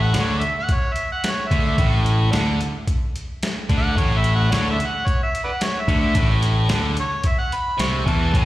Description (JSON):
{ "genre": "blues rock power trio and southern rock", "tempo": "110 BPM", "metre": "4/4", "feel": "straight", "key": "A major", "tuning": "A4 = 438 Hz", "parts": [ { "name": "overdriven harmonica", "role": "melody", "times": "0.0-8.4 s", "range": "B4 to C#6", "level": "-25 LUFS", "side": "equal", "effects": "slapback echo, digital delay" }, { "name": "biting overdriven guitar", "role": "riff", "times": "0.0-8.4 s", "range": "A2 to E3", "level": "-24 LUFS", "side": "equal", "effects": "slapback echo" }, { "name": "growling picked electric bass", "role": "bass", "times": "0.0-8.4 s", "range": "A1 to E2", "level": "-20 LUFS", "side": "equal", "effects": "overdrive" }, { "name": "boom bap sampler-style drum kit", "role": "drums", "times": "0.1-8.4 s", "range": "hi-hat, kick drum, snare drum", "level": "-22 LUFS", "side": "equal", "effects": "none" } ], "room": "digital ambience", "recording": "live gig heard through the venue's PA, recital hall reverb", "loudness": "-18 LUFS", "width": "side -16 dB against mid", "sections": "0.0-8.4 A section", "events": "none", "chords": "0.0 A" }